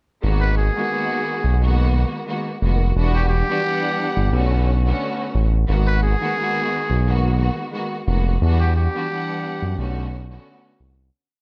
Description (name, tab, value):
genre	hip hop, boom-bap hip-hop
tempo	88 BPM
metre	4/4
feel	swing 54% on 16ths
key	G# minor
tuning	A4 = 440 Hz
part	warm studio string section	accompaniment	0.2-10.9 s	D3 to F#5	-27 LUFS	equal	cassette tape, high-pass filter, low-pass filter
part	smooth synth bass	bass	0.2-11.1 s	E1 to F#2	-20 LUFS	equal	none
part	trumpet with metal mute	melody	0.4-9.9 s	G4 to B4	-27 LUFS	equal	high-pass filter, low-pass filter
room	little or no reverb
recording	none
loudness	-20 LUFS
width	mono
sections	0.2-11.1 hook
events	fade-out 8.4-11.1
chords	0.2 G#m7; 3.0 Em7; 4.3 Bm7; 5.7 G#m7; 8.4 Em7; 9.8 Bm7